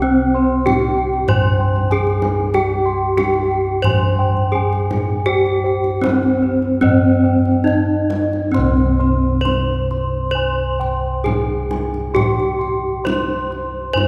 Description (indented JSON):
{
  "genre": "Javanese gamelan",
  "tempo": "66-96 BPM",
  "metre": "4/4",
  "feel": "straight",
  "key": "unclear",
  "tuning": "A4 = 439 Hz",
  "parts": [
    { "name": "gamelan-type bronze metallophone", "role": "melody", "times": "0.0-14.1 s", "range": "C4 to C5", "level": "-21 LUFS", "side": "equal", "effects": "none" },
    { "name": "gamelan-type bossed gongs", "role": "arpeggios", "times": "0.0-14.1 s", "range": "C5 to C6", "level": "-28 LUFS", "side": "equal", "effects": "none" },
    { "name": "gamelan-type bronze metallophone", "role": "arpeggios", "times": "0.0-14.1 s", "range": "C5 to C6", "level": "-28 LUFS", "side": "equal", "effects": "none" },
    { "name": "gamelan-type bossed gongs", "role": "bass", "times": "0.0-14.1 s", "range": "C2 to G4-30c", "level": "-23 LUFS", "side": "equal", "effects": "none" },
    { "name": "kendang", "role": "percussion", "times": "0.7-14.1 s", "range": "none", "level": "-27 LUFS", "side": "equal", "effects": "none" }
  ],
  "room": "wet concert hall reverb, RT60 2.3 s",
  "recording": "recorded in a church or concert hall",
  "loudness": "-17 LUFS",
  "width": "mono",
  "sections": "0.0-8.5 A section; 8.5-14.1 B section",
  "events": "none",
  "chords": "none"
}